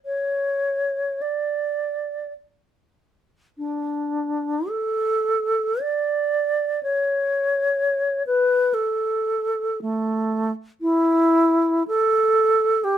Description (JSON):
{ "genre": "classical, free, expressive piece for unaccompanied alto flute", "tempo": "42-64 BPM", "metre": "3/4", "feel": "rubato", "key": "unclear", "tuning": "A4 = 441 Hz", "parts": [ { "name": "alto flute", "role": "solo", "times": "0.1-13.0 s", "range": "A3 to D5", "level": "-20 LUFS", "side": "equal", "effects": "none" } ], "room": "light reverb", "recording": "minimal, uncompressed stereo recording", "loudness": "-20 LUFS", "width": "side -10 dB against mid", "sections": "0.0-3.6 A section; 3.6-13.0 B section", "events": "none", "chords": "none", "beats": "| 0.06 1.22 2.33 | 3.57 4.69 5.84 | 6.85 7.79 8.75 | 9.80 10.81 11.87 | 12.83" }